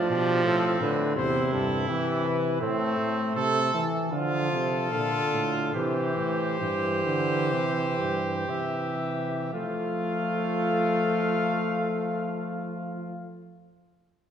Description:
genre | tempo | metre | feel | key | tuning
classical, imitative canzona for brass ensemble | 55-84 BPM | 4/4 | straight | F major | A4 = 440 Hz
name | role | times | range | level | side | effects
mellow trumpet | melody | 0.0-13.3 s | G4 to F5 | -32 LUFS | left 4 dB | none
clear trumpet | second line | 0.0-13.3 s | C4 to A4 | -31 LUFS | right 3 dB | none
clear trombone | accompaniment | 0.0-13.3 s | C3 to A3 | -28 LUFS | equal | none
mellow bass trombone | bass | 0.0-13.3 s | E2 to F3 | -31 LUFS | right 2 dB | none
room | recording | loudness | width
wet scoring stage reverb, RT60 1.6 s | recorded in a church or concert hall | -24 LUFS | side -8 dB against mid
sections
0.0-9.5 A section; 9.5-13.9 B section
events
slowing down 1.2-9.5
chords
0.0 F/A; 1.2 C/E; 2.6 Am; 4.1 Dm; 5.7 C; 9.5 F

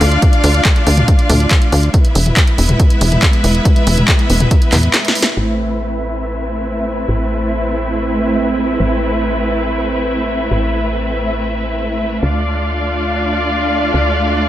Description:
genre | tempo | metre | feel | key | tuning
uplifting trance | 140 BPM | 4/4 | straight | A minor | A4 = 440 Hz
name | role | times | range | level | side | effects
rich symphonic string section | sustained chords | 0.0-14.5 s | G#3 to F5 | -17 LUFS | equal | sidechain pumping, low-pass filter
tight sequencer bass | bass | 0.0-14.5 s | E1 to E2 | -17 LUFS | equal | sidechain pumping
punchy analog drum machine | drums | 0.0-5.3 s | handclaps, hi-hat, snare drum, toms | -16 LUFS | equal | low-pass filter on hats, low-pass filter on snare, low-pass filter on toms
electronic kick drum | drums | 0.2-4.6 s | none | -12 LUFS | equal | none
room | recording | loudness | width
light reverb, digital ambience | none | -12 LUFS | side -13 dB against mid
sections
0.0-5.4 A section; 5.4-14.5 B section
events
drum fill 4.9-5.4; filter sweep on string section 5.4-14.5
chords
0.0 Dm; 1.9 E; 5.4 Amadd9; 12.2 Dm

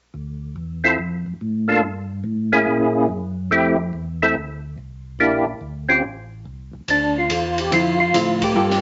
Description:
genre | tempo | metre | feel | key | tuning
soul jazz organ trio | 143 BPM | 4/4 | swing 66% on 8ths | D minor | A4 = 438 Hz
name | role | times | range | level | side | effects
mellow tonewheel organ | bass | 0.1-8.8 s | A1 to A#2 | -29 LUFS | equal | overdrive, chorus vibrato, slow rotary speaker
percussive tonewheel organ | melody | 0.8-8.8 s | A3 to A4 | -20 LUFS | equal | slow rotary speaker, chorus vibrato
open jazz drum kit | drums | 6.9-8.8 s | hi-hat, kick drum, ride cymbal, snare drum | -27 LUFS | equal | none
hollow-body jazz guitar | accompaniment | 7.7-8.8 s | D3 to A4 | -24 LUFS | equal | none
room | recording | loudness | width
wet studio reverb, RT60 0.7 s | nothing above 7.7 kHz | -20 LUFS | mono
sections
0.2-6.9 A section; 6.9-8.8 B section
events
band accent 8.4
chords
0.2 Dm; 1.8 Gmadd9; 2.7 F#9; 3.5 Fmaj7; 5.2 Em7b5; 6.0 Am; 6.9 Dm9

